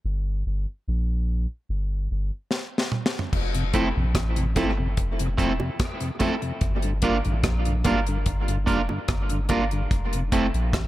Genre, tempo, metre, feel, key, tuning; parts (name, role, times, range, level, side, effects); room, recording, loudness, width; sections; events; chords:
dub reggae; 73 BPM; 4/4; straight; F major; A4 = 440 Hz
soft dub sub bass; bass; 0.0-10.9 s; E1 to Bb1; -25 LUFS; equal
deep reggae drum kit; drums; 2.5-10.9 s; crash cymbal, hi-hat, kick drum, rim click, snare drum, toms; -26 LUFS; equal
mellow tonewheel organ; accompaniment; 3.5-10.2 s; F2 to F4; -30 LUFS; left 2 dB; overdrive, chorus vibrato, slow rotary speaker, dub echo
electric guitar at the edge of break-up; accompaniment; 3.7-10.5 s; A3 to Bb4; -27 LUFS; right 3 dB; dub echo
bongos; percussion; 4.2-10.9 s; -36 LUFS; right 4 dB
light reverb; echo-heavy mix; -22 LUFS; side -15 dB against mid
0.0-3.3 A section; 3.3-10.9 B section
break 0.0-3.3; drum fill 2.5-3.3
0.0 Gm; 3.3 Fmaj7; 6.6 Gm7; 9.9 Fmaj7